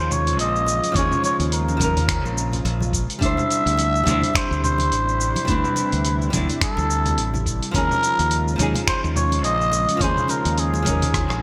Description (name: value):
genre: sunset chillout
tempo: 106 BPM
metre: 4/4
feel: swing 57% on 16ths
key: unclear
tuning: A4 = 440 Hz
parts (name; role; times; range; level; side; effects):
- trumpet with cup mute; melody; 0.0-11.4 s; Ab4 to E5; -25 LUFS; equal; delay
- flamenco guitar; accompaniment; 0.0-11.4 s; F3 to D5; -30 LUFS; equal; none
- soft string machine; sustained chords; 0.0-11.4 s; C3 to F4; -33 LUFS; equal; phaser, ensemble chorus
- modern bright fingered electric bass; bass; 0.0-11.4 s; A1 to Eb2; -26 LUFS; equal; none
- dusty soul sampler-style drum kit; drums; 0.1-11.4 s; congas, finger snaps, hi-hat, rim click, shaker; -29 LUFS; equal; gated reverb
- congas; percussion; 0.3-11.4 s; none; -34 LUFS; equal; none
- electronic kick drum; drums; 0.9-11.3 s; none; -28 LUFS; equal; none
room: moderate lush hall reverb, RT60 1.7 s, digital ambience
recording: bright 1980s-style digital production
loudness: -21 LUFS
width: mono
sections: 0.0-11.4 A section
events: drum fill 11.1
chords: 0.0 Eb9sus4; 3.2 D9sus4; 7.7 Eb9sus4